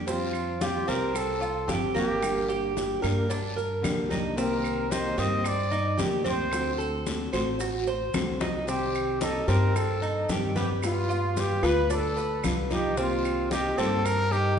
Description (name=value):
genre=latin, Cuban son and guajira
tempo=112 BPM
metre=4/4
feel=straight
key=G minor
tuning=A4 = 439 Hz
part: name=nylon-string guitar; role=accompaniment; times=0.0-14.1 s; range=C3 to G4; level=-31 LUFS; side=left 2 dB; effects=none
part: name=Cuban tres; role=arpeggios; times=0.0-14.6 s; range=Bb3 to C5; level=-30 LUFS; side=right 2 dB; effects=none
part: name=upright bass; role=bass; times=0.0-14.5 s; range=G1 to G2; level=-31 LUFS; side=equal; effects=none
part: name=breathy trumpet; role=melody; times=0.1-14.6 s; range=F4 to Eb5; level=-30 LUFS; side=right 1 dB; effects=none
part: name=bongos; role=percussion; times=0.1-14.3 s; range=none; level=-39 LUFS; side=left 4 dB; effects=none
part: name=congas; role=percussion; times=0.1-14.6 s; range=none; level=-36 LUFS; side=equal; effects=none
part: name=guiro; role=percussion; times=0.1-14.6 s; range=none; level=-41 LUFS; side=left 4 dB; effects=none
part: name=maracas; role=percussion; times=0.1-14.6 s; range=none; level=-44 LUFS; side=right 6 dB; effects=none
part: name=claves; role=percussion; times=0.3-14.3 s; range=none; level=-43 LUFS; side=right 4 dB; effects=none
room=wet recital hall reverb, RT60 1.6 s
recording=recorded in a church or concert hall, nothing above 10.8 kHz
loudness=-24 LUFS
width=side -7 dB against mid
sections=0.1-14.6 A section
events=drum fill 8.4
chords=0.1 Fsus2; 2.2 Gm; 4.4 Cm7; 6.5 D7; 8.7 Cm; 10.8 G7; 13.0 Cm7